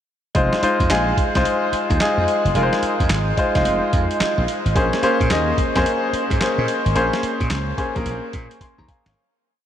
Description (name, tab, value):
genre	R&B, new jack swing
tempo	109 BPM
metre	4/4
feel	swing 64% on 16ths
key	Bb minor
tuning	A4 = 440 Hz
part	clear concert grand piano	accompaniment	0.3-9.3 s	Ab3 to C6	-19 LUFS	left 1 dB	none
part	slap bass	bass	0.3-9.1 s	F1 to Bb2	-22 LUFS	equal	none
part	boom bap sampler-style drum kit	drums	0.3-9.2 s	handclaps, hi-hat, kick drum, snare drum	-24 LUFS	equal	none
room	moderate huge ambient reverb, RT60 9.2 s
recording	dreamy mix soaked in reverb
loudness	-17 LUFS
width	side -10 dB against mid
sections	0.3-9.2 verse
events	fade-out 7.0-9.2; drum fill 8.6-9.2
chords	0.3 Fm7; 4.8 Bbm9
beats	| 0.35 0.90 1.45 2.00 | 2.55 3.10 3.65 4.20 | 4.75 5.30 5.85 6.41 | 6.96 7.51 8.06 8.61